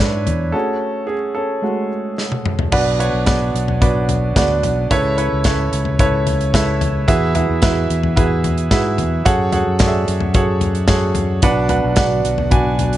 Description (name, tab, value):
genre	piano-driven pop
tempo	110 BPM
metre	4/4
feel	straight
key	unclear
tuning	A4 = 439 Hz
part	clear grand piano	accompaniment	0.0-13.0 s	B2 to G#5	-18 LUFS	right 2 dB	none
part	fingered electric bass	bass	0.0-13.0 s	B1 to G#2	-20 LUFS	left 1 dB	none
part	modern studio drum kit	drums	0.0-13.0 s	crash cymbal, hi-hat, kick drum, snare drum, toms	-19 LUFS	left 1 dB	none
part	airy breathy pad	sustained chords	11.4-13.0 s	D3 to F#4	-28 LUFS	equal	none
room	light reverb, studio reverb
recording	nothing above 10.5 kHz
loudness	-14 LUFS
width	side -13 dB against mid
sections	0.0-2.7 A section; 2.7-13.0 B section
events	grand piano solo 0.0-2.7; break 0.5-2.7; drum fill 2.2-2.7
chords	0.0 Eadd9; 0.5 F#madd9; 2.7 Bm; 4.9 Aadd9/C#; 7.1 Eadd9; 9.3 F#madd9; 11.4 Bm